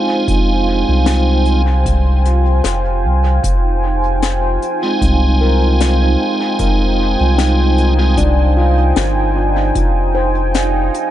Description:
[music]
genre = ambient dub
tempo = 76 BPM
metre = 4/4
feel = swing 53% on 16ths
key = F minor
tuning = A4 = 440 Hz
[part]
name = deep dark ambient pad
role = sustained chords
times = 0.0-11.1 s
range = F4 to Ab5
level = -19 LUFS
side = right 1 dB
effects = chorus, built-in reverb
[part]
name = handpan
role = arpeggios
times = 0.0-11.1 s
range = D4 to C5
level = -24 LUFS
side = left 3 dB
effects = low-pass filter, tape echo
[part]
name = tonewheel organ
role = stabs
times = 0.0-8.2 s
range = Ab3 to F4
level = -19 LUFS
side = right 2 dB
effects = chorus vibrato, dub echo
[part]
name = soft dub sub bass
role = bass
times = 0.3-10.9 s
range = F1 to C2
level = -14 LUFS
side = equal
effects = none
[part]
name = electronic kick drum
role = drums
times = 0.3-9.9 s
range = none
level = -20 LUFS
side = equal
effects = none
[part]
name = soft brush drum kit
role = drums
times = 0.3-11.1 s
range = hi-hat, snare drum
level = -24 LUFS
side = left 6 dB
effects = dub echo
[part]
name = bubbling stepped-filter texture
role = texture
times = 3.6-11.1 s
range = Eb4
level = -25 LUFS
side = right 5 dB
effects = chorus, built-in reverb
[sound]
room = studio ambience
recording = echo-heavy mix, nothing above 11.0 kHz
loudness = -12 LUFS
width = side -12 dB against mid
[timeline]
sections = 0.0-11.1 A section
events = none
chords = 0.0 Fm7

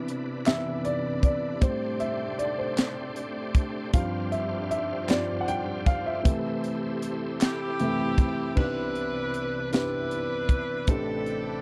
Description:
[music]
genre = slow gospel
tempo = 52 BPM (dotted quarters)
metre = 6/8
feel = straight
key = C major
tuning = A4 = 440 Hz
[part]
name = warm upright piano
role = accompaniment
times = 0.0-11.6 s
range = A1 to G5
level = -32 LUFS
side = equal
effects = none
[part]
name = bright tonewheel organ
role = sustained chords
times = 0.0-11.6 s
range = C3 to C5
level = -39 LUFS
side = equal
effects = slow rotary speaker, overdrive, chorus vibrato
[part]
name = warm studio string section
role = sustained chords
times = 0.0-8.5 s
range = C3 to D5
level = -42 LUFS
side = equal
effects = none
[part]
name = crisp fusion drum kit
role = drums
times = 0.1-11.4 s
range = crash cymbal, hi-hat, kick drum, snare drum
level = -26 LUFS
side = equal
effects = none
[part]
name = group handclap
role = percussion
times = 0.5-7.8 s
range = none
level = -41 LUFS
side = equal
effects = none
[part]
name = clear saxophone section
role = melody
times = 7.4-11.6 s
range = C4 to B4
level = -33 LUFS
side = equal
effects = none
[sound]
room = little or no reverb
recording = dry, close 1970s-style studio recording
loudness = -28 LUFS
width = mono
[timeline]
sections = 0.0-8.6 A section; 8.6-11.6 B section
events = upright piano solo 0.0-8.6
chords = 0.0 Cmaj9; 1.6 Am7; 3.9 G7sus4; 6.3 C6; 8.6 Cmaj9; 10.9 Am11

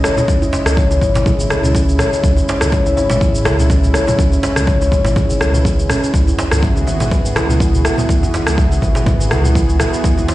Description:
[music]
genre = afro house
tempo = 123 BPM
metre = 4/4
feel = swing 54% on 16ths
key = C# minor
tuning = A4 = 440 Hz
[part]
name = warm analog pad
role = sustained chords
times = 0.0-10.3 s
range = C#3 to D#5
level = -23 LUFS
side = equal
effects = chorus, sidechain pumping
[part]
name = kalimba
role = arpeggios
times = 0.0-10.1 s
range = C#4 to E5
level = -20 LUFS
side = left 1 dB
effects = sidechain pumping, digital delay
[part]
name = dark detuned saw bass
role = bass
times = 0.0-10.2 s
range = G#1 to C#2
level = -18 LUFS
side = equal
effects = sidechain pumping
[part]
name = afro-pop drum kit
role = drums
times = 0.0-10.3 s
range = cabasa, rim click, toms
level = -21 LUFS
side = equal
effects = small room ambience
[part]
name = congas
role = percussion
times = 0.0-9.9 s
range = none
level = -23 LUFS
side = equal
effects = none
[part]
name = djembe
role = percussion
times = 0.2-10.3 s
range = none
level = -24 LUFS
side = right 1 dB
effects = none
[part]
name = electronic kick drum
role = drums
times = 0.3-10.1 s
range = none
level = -16 LUFS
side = equal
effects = overdrive, small room ambience
[sound]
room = moderate recital hall reverb, RT60 1.3 s, small room ambience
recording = played on a big sound system in a bare room, large studio reverb, nothing above 10.7 kHz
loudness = -12 LUFS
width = side -16 dB against mid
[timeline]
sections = 0.0-10.3 A section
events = none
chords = 0.0 C#m; 6.1 E

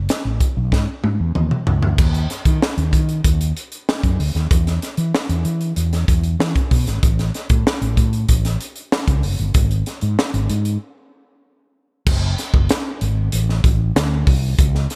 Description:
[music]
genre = polished 1980s jazz-funk pop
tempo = 95 BPM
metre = 4/4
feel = straight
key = unclear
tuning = A4 = 440 Hz
[part]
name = fretless electric bass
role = bass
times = 0.0-14.9 s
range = F#1 to E3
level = -21 LUFS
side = equal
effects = none
[part]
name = crisp fusion drum kit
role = drums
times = 0.1-15.0 s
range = crash cymbal, hi-hat, kick drum, snare drum, toms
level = -21 LUFS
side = equal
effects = gated reverb
[sound]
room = little or no reverb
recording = none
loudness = -19 LUFS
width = mono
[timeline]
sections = 0.0-2.0 A section; 2.0-12.1 B section; 12.1-15.0 C section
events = drum fill 0.7-2.0; break 10.8-12.1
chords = none

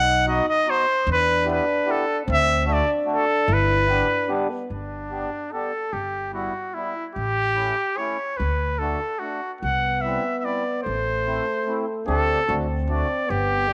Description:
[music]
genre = alpine folk, alpine dance band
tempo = 147 BPM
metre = 3/4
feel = straight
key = G major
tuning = A4 = 441 Hz
[part]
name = clear trumpet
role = melody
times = 0.0-13.7 s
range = D4 to F#5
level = -25 LUFS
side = equal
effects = none
[part]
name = clear euphonium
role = second line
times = 0.0-4.7, 9.6-13.7 s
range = G3 to E4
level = -30 LUFS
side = equal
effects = none
[part]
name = upright bass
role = bass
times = 0.0-13.7 s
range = G1 to E2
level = -29 LUFS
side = equal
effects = none
[part]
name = mellow accordion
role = accompaniment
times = 0.3-13.7 s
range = G3 to G4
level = -32 LUFS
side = equal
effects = none
[sound]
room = moderate echo chamber reverb, RT60 2.0 s, studio reverb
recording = none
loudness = -23 LUFS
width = mono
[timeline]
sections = 0.0-4.7 A section; 4.7-13.7 B section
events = none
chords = 0.0 B; 1.1 Em; 2.3 D7; 3.5 G; 5.9 Em/G; 7.2 A7; 8.4 D; 9.6 C; 10.9 Am; 12.1 D7sus4; 12.5 D7

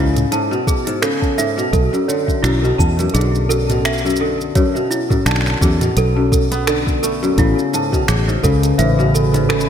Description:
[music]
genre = folktronica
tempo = 85 BPM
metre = 4/4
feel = swing 56% on 16ths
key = unclear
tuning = A4 = 444 Hz
[part]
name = toy piano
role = second line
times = 0.0-9.7 s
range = E4 to A5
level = -21 LUFS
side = right 5 dB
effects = analog delay
[part]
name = kora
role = arpeggios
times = 0.0-9.7 s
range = F#2 to B3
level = -19 LUFS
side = left 3 dB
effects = analog delay
[part]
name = fingered electric bass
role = bass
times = 0.0-9.7 s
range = A1 to E2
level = -18 LUFS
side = equal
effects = none
[part]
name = organic electronic drum kit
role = drums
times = 0.2-9.7 s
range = finger snaps, hi-hat, shaker, toms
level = -24 LUFS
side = right 1 dB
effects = none
[part]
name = electronic kick drum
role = drums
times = 0.7-8.6 s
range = none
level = -18 LUFS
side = equal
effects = none
[part]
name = warbly tape-like pad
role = sustained chords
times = 7.4-9.7 s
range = C#3 to B4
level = -20 LUFS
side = equal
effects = chorus, built-in reverb
[sound]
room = moderate lush hall reverb, RT60 1.9 s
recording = dreamy mix soaked in reverb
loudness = -14 LUFS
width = side -8 dB against mid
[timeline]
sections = 0.0-9.7 A section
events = none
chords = 0.0 Amaj9; 1.7 Bm7; 7.4 Amaj9

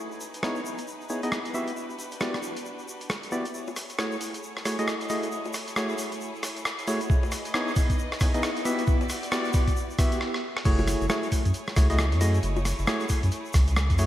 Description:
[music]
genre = UK garage, two-step garage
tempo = 135 BPM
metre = 4/4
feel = swing 61% on 16ths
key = F# dorian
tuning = A4 = 440 Hz
[part]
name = clear symphonic violin section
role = sustained chords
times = 0.0-14.1 s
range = A3 to D#5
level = -40 LUFS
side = equal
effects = sidechain pumping
[part]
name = tube shaker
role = percussion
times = 0.1-14.1 s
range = none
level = -42 LUFS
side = left 2 dB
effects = none
[part]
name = boom bap sampler-style drum kit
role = drums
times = 0.2-14.1 s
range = bongos, crash cymbal, hi-hat, rim click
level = -31 LUFS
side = equal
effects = high-pass filter on snare, high-pass filter on hats, high-pass filter on perc, high-pass filter on cymbals, gated reverb
[part]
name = percussive organ stab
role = stabs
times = 0.4-14.1 s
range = A3 to E5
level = -30 LUFS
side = equal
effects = chorus, digital delay
[part]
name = electronic kick drum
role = drums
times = 7.1-14.0 s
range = none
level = -23 LUFS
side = equal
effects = none
[part]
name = saturated sub bass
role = bass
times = 10.7-14.1 s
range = F#1 to F#2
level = -24 LUFS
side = equal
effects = none
[sound]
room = moderate lush hall reverb, RT60 2.2 s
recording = bright 1980s-style digital production, vinyl crackle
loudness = -24 LUFS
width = side -13 dB against mid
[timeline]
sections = 0.0-3.5 A section; 3.5-10.7 B section; 10.7-14.1 C section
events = build-up 3.5-10.7; drum fill 10.2-10.7; stop 10.2-10.7; drop 10.7-14.1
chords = 0.0 C#m7; 1.5 Em7; 3.5 F#m7; 7.1 C#m7; 8.7 Em7; 10.7 F#m7

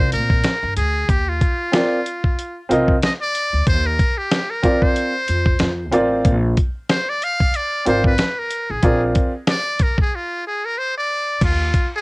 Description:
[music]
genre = hip hop, jazz-hop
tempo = 93 BPM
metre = 4/4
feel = swing 57% on 16ths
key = Eb major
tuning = A4 = 440 Hz
[part]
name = trumpet with metal mute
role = melody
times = 0.0-12.0 s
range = F4 to F5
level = -22 LUFS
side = equal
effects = none
[part]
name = warm upright piano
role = accompaniment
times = 0.0-9.3 s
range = C4 to Eb5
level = -18 LUFS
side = right 1 dB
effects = cassette tape
[part]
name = upright bass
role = bass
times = 0.0-11.7 s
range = Ab1 to Bb2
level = -21 LUFS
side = equal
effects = none
[part]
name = dusty soul sampler-style drum kit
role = drums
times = 0.1-11.9 s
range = crash cymbal, hi-hat, kick drum, snare drum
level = -18 LUFS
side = equal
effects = cassette tape
[sound]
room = light reverb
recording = home recording on cassette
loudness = -16 LUFS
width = side -28 dB against mid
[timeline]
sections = 0.0-11.4 A section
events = muted trumpet solo 0.0-11.4; break 10.1-11.4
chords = 0.0 Bb9; 1.1 Ebsus2; 5.6 F; 6.3 Bbadd9; 11.4 Ebsus2

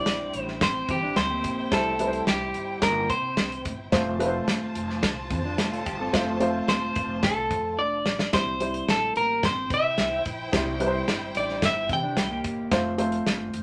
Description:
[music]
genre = uptempo 1960s-style soul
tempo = 109 BPM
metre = 4/4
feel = straight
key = C mixolydian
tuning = A4 = 438 Hz
[part]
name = electric guitar at the edge of break-up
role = melody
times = 0.0-12.4 s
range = G4 to G5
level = -28 LUFS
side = equal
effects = none
[part]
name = vibraphone with soft mallets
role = second line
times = 0.0-12.4 s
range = G3 to G4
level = -40 LUFS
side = equal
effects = none
[part]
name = warm studio violin section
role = second line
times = 0.0-12.7 s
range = E4 to A5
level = -40 LUFS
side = equal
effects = none
[part]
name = dark upright piano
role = accompaniment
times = 0.0-13.6 s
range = G3 to C5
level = -30 LUFS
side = equal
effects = none
[part]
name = upright bass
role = bass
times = 0.1-13.6 s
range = E1 to C3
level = -39 LUFS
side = equal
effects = none
[part]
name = natural country drum kit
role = drums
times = 0.1-13.6 s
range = hi-hat, kick drum, snare drum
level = -29 LUFS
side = equal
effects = none
[part]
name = mellow electric guitar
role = riff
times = 0.9-1.7, 5.3-6.8, 11.9-12.7 s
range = E3 to A4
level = -34 LUFS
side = equal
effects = none
[sound]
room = moderate studio ambience, RT60 0.5 s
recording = none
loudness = -26 LUFS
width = mono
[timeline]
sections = 0.0-13.6 A section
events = drum fill 7.8-8.3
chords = 0.0 C; 3.9 F; 8.3 C; 12.7 F

